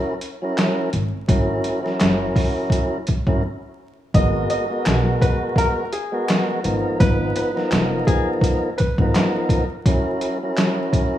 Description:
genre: hip hop, boom-bap hip-hop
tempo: 84 BPM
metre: 4/4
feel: swing 58% on 16ths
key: G# minor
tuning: A4 = 436 Hz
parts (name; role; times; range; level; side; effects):
- tonewheel organ; accompaniment; 0.0-11.2 s; E#3 to B4; -22 LUFS; equal; overdrive, stopped rotary speaker, cassette tape, high-pass filter, low-pass filter
- trip hop sampler-style drum kit; drums; 0.2-11.1 s; handclaps, hi-hat, kick drum, snare drum; -20 LUFS; equal; overdrive
- upright bass; bass; 0.9-9.1 s; E#1 to B1; -23 LUFS; equal; none
- bright upright piano; melody; 4.1-9.0 s; G#4 to D#5; -26 LUFS; left 1 dB; high-pass filter, low-pass filter, digital delay
- finger snaps; percussion; 4.9-6.5 s; none; barely audible; none; none
room: light reverb, studio reverb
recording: rough home demo mix, vinyl crackle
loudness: -18 LUFS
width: side -12 dB against mid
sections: 0.0-11.2 A section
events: break 3.4-4.1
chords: 0.0 F#7/G#; 4.1 G#m9; 6.6 G#m69; 9.9 F#7

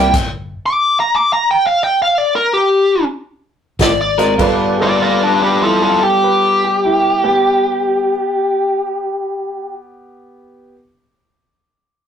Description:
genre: electric blues shuffle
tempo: 98-123 BPM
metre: 4/4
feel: swing 66% on 8ths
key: G mixolydian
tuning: A4 = 439 Hz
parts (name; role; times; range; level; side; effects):
- smooth overdriven lead guitar; melody; 0.0-9.7 s; D4 to D6; -13 LUFS; left 1 dB; none
- honky-tonk upright piano; accompaniment; 0.0-0.1, 4.2-8.1 s; F4 to Eb5; -21 LUFS; right 6 dB; none
- electric guitar at the edge of break-up; riff; 0.0-0.2, 3.8-8.2 s; C3 to Bb4; -20 LUFS; left 4 dB; none
- vintage muted fingered electric bass; bass; 0.0-0.5, 3.8-8.1 s; G1 to C2; -27 LUFS; equal; none
- swinging big-band drum kit; drums; 0.1-0.3, 3.8-4.6 s; crash cymbal, hi-hat, kick drum, snare drum; -19 LUFS; equal; none
- warm upright piano; second line; 4.8-10.7 s; B3 to B4; -22 LUFS; right 1 dB; none
room: moderate studio reverb, RT60 0.6 s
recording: rough rehearsal-room recording, tube saturation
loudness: -12 LUFS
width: side -8 dB against mid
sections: 0.0-4.4 A section; 4.4-9.3 B section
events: slowing down 0.1-4.4; stop 0.1-3.8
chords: 0.1 N.C.; 3.8 Ab9; 4.4 G9

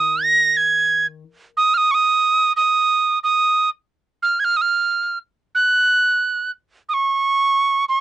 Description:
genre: folk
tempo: 90 BPM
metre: 4/4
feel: straight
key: unclear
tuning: A4 = 440 Hz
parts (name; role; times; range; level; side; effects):
- mellow tin whistle; melody; 0.0-8.0 s; Db6 to Bb6; -15 LUFS; right 3 dB; cassette tape
- fingerpicked steel-string acoustic guitar; accompaniment; 0.0-1.2 s; Eb3; -42 LUFS; left 8 dB; cassette tape
room: light reverb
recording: home recording on cassette, nothing above 10.9 kHz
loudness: -15 LUFS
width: side -14 dB against mid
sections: 0.0-8.0 A section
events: none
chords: none

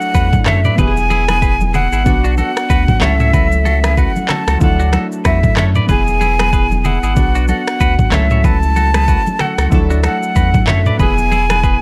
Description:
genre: afrobeats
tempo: 94 BPM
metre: 4/4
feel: swing 58% on 16ths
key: F# minor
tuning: A4 = 440 Hz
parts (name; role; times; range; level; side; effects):
- breathy jazz flute; melody; 0.0-11.8 s; E5 to A5; -20 LUFS; equal; delay
- warm analog keys; accompaniment; 0.0-11.8 s; E#3 to A4; -24 LUFS; equal; chorus
- afro-pop drum kit; drums; 0.0-11.8 s; finger snaps, handclaps, kick drum, rim click, shaker, toms; -18 LUFS; equal; vintage 12-bit sampler grit
- clean electric guitar; riff; 0.1-11.8 s; D4 to E5; -25 LUFS; equal; none
- warm sub bass; bass; 0.1-11.8 s; E1 to F#2; -18 LUFS; equal; none
- congas; percussion; 0.2-11.6 s; none; -26 LUFS; equal; none
room: digital ambience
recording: none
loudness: -14 LUFS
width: mono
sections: 0.0-11.8 A section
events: none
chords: 0.0 Dadd9; 0.8 E; 2.1 Bm; 3.0 F#m7/C#; 4.6 Dadd9; 5.9 E; 7.2 Bm; 8.1 F#m7/C#; 9.7 Dadd9; 11.0 E

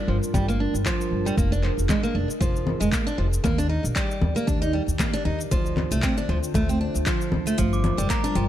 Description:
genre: folktronica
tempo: 116 BPM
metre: 4/4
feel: swing 56% on 16ths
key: G minor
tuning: A4 = 440 Hz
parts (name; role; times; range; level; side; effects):
- warbly tape-like pad; sustained chords; 0.0-8.5 s; D3 to D5; -31 LUFS; equal; chorus, built-in reverb
- picked steel-string acoustic guitar; arpeggios; 0.0-8.4 s; F3 to Eb4; -26 LUFS; right 2 dB; low-pass filter, ping-pong delay
- upright bass; bass; 0.1-8.4 s; F1 to Eb2; -25 LUFS; equal; none
- organic electronic drum kit; drums; 0.2-8.5 s; congas, handclaps, hi-hat, shaker; -29 LUFS; left 2 dB; none
- electronic kick drum; drums; 0.3-8.2 s; none; -27 LUFS; equal; none
- glockenspiel with brass mallets; second line; 7.7-8.5 s; G5 to D6; -30 LUFS; right 2 dB; none
room: little or no reverb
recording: none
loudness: -21 LUFS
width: side -12 dB against mid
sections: 0.0-8.5 A section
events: none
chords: 0.0 Gm7; 1.4 Bb7/F; 3.4 Ebmaj7; 5.5 Dm7; 7.6 Gm7

